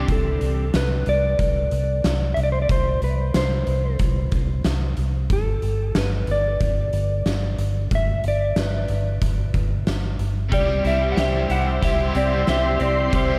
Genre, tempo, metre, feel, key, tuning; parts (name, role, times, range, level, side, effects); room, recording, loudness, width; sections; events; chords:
dream pop; 92 BPM; 4/4; straight; C major; A4 = 441 Hz
cranked stack guitar; accompaniment; 0.0-0.6, 10.5-13.4 s; C3 to G4; -35 LUFS; equal; overdrive, tremolo, lush chorus
soft string machine; sustained chords; 0.0-0.1, 10.5-13.4 s; G4 to C6; -33 LUFS; equal; phaser, ensemble chorus
clean electric guitar; arpeggios; 0.0-0.7, 10.5-13.4 s; E3 to G4; -31 LUFS; equal; ensemble chorus, delay
vintage muted fingered electric bass; bass; 0.0-13.4 s; G1 to C2; -25 LUFS; equal
clean lap steel guitar; melody; 0.1-13.4 s; A4 to F#5; -27 LUFS; equal; delay
oversized low-tuned drum kit; drums; 0.1-13.3 s; hi-hat, kick drum, snare drum; -28 LUFS; equal
vibraphone with hard mallets; texture; 11.2-13.4 s; C5; -38 LUFS; equal; delay
moderate cathedral reverb, RT60 5.3 s; dreamy mix soaked in reverb; -22 LUFS; mono
0.1-13.4 A section
0.1 Csus2; 5.3 G5; 10.5 C